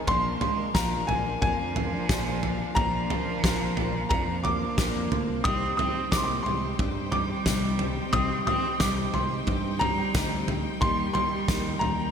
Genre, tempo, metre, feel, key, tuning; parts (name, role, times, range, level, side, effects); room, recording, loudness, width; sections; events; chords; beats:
indie folk with a building arrangement; 89 BPM; 4/4; straight; A4 = 440 Hz
warm upright piano; melody; 0.0-12.1 s; Ab5 to Eb6; -29 LUFS; left 1 dB; ping-pong delay
clear cello; second line; 0.0-12.1 s; F3 to C4; -33 LUFS; right 6 dB
felt-muted upright piano; accompaniment; 0.0-12.1 s; Bb1 to F5; -40 LUFS; left 5 dB
picked steel-string acoustic guitar; accompaniment; 0.0-12.1 s; Bb2 to Bb4; -36 LUFS; left 7 dB; lush chorus
clear chamber string section; sustained chords; 0.0-12.1 s; D4 to G5; -39 LUFS; equal
fingered electric bass; bass; 0.1-12.1 s; Bb1 to G2; -33 LUFS; equal
loose indie drum kit; drums; 0.1-12.0 s; kick drum, snare drum, toms; -28 LUFS; right 1 dB
tambourine; percussion; 0.8-11.6 s; -41 LUFS; left 11 dB
moderate lush hall reverb, RT60 2.8 s; bright 1980s-style digital production; -24 LUFS; side -7 dB against mid
0.0-12.1 A section
0.1 Bb; 5.5 Cm; 10.8 Eb
| 0.09 0.76 1.43 2.10 | 2.77 3.44 4.12 4.79 | 5.46 6.13 6.80 7.47 | 8.14 8.81 9.48 10.15 | 10.82 11.49